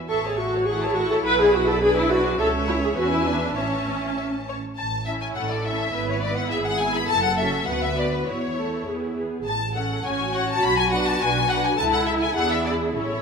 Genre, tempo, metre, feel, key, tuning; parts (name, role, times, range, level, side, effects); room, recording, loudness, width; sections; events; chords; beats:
quick classical-period movement for string orchestra; 103 BPM; 2/4; rubato; A major; A4 = 440 Hz
warm studio violin section; melody; 0.1-13.2 s; B4 to C#6; -27 LUFS; left 5 dB
warm studio violin section; second line; 0.1-13.2 s; A4 to B5; -28 LUFS; left 3 dB
dark studio viola section; accompaniment; 0.1-13.2 s; A3 to C#5; -24 LUFS; right 1 dB
warm studio double bass section; bass; 0.1-13.2 s; F#1 to E2; -29 LUFS; right 3 dB
warm studio cello section; bass; 0.7-13.2 s; C#4 to B4; -29 LUFS; right 2 dB
wet recital hall reverb, RT60 1.8 s; minimal, uncompressed stereo recording; -20 LUFS; side -5 dB against mid
0.0-4.8 A section; 4.8-13.2 A section
0.1 A; 0.7 F#m/A; 1.2 Bm; 1.8 G#dim/B; 2.4 A/C#; 3.0 E7; 3.6 A; 6.0 E/G#; 7.1 F#m; 7.7 Bm/D; 8.3 A/E; 8.9 E; 9.5 A; 10.1 F#m/A; 10.6 Bm; 11.8 A/C#; 12.4 E7
| 0.10 0.68 | 1.25 1.82 | 2.39 2.97 | 3.57 4.18 | 4.79 5.37 | 5.95 6.53 | 7.10 7.68 | 8.28 8.87 | 9.46 10.05 | 10.63 11.21 | 11.79 12.37 | 12.97